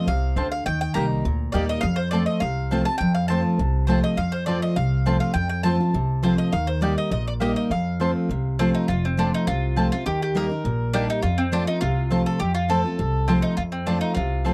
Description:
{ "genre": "bluegrass", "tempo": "204 BPM", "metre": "4/4", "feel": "swing 53% on 8ths", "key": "F mixolydian", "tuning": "A4 = 442 Hz", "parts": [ { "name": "mandolin", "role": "melody", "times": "0.0-14.5 s", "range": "C4 to Bb5", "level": "-30 LUFS", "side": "equal", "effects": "none" }, { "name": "picked steel-string acoustic guitar", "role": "accompaniment", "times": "0.0-14.5 s", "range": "F2 to G4", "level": "-26 LUFS", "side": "equal", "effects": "none" }, { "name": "upright bass", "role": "bass", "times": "0.1-14.5 s", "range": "F1 to F2", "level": "-28 LUFS", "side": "equal", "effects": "none" }, { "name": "mandolin", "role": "stabs", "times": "0.4-14.5 s", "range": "Bb3 to A5", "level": "-31 LUFS", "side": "equal", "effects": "none" } ], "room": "little or no reverb", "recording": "dry, close 1970s-style studio recording", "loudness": "-23 LUFS", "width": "mono", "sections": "0.0-8.9 A section; 8.9-14.5 A section", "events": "none", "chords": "0.0 F; 0.7 Eb; 1.8 F; 6.5 Eb; 7.7 F; 10.1 Eb; 11.2 F", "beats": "0.07 0.37 | 0.66 0.95 1.25 1.54 | 1.83 2.13 2.42 2.71 | 3.01 3.30 3.60 3.89 | 4.18 4.48 4.77 5.06 | 5.36 5.65 5.95 6.24 | 6.53 6.83 7.12 7.42 | 7.71 8.01 8.30 8.59 | 8.89 9.18 9.47 9.77 | 10.06 10.36 10.65 10.94 | 11.24 11.53 11.82 12.12 | 12.41 12.70 13.00 13.29 | 13.58 13.88 14.17 14.46" }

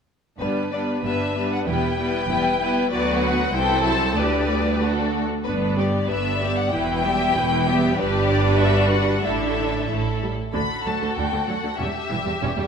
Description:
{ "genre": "quick classical-period movement for string orchestra", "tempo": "95 BPM", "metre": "2/4", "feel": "straight", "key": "G major, D major from 8.0 s", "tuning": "A4 = 440 Hz", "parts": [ { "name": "rich chamber violin section", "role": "melody", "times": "0.4-12.7 s", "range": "B4 to B5", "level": "-26 LUFS", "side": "left 5 dB", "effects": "none" }, { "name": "rich studio violin section", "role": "second line", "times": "0.4-12.7 s", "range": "D4 to E5", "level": "-26 LUFS", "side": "left 2 dB", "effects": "none" }, { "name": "rich chamber viola section", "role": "accompaniment", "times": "0.4-12.6 s", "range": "D3 to E4", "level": "-25 LUFS", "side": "right 1 dB", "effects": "none" }, { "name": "rich chamber double bass section", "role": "bass", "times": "0.4-12.5 s", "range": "E1 to D2", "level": "-27 LUFS", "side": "right 2 dB", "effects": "none" }, { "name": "rich studio cello section", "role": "bass", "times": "0.4-12.6 s", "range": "C2 to A2", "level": "-28 LUFS", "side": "right 3 dB", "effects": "none" } ], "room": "moderate scoring stage reverb, RT60 1.9 s", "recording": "none", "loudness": "-19 LUFS", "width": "side -6 dB against mid", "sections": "0.4-10.5 A section; 10.5-12.7 B section", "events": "none", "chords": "0.4 G; 1.7 Em; 2.9 Bm/D; 3.5 Am/C; 4.2 G/D; 4.8 D; 5.5 G; 6.7 Em; 8.0 G; 9.3 Asus4; 9.9 A5; 10.5 D; 11.8 C#dim (rootless)", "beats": "| 0.41 1.04 | 1.66 2.29 | 2.91 3.53 | 4.17 4.81 | 5.46 6.10 | 6.73 7.36 | 7.98 8.61 | 9.25 9.90 | 10.54 11.17 | 11.80 12.42" }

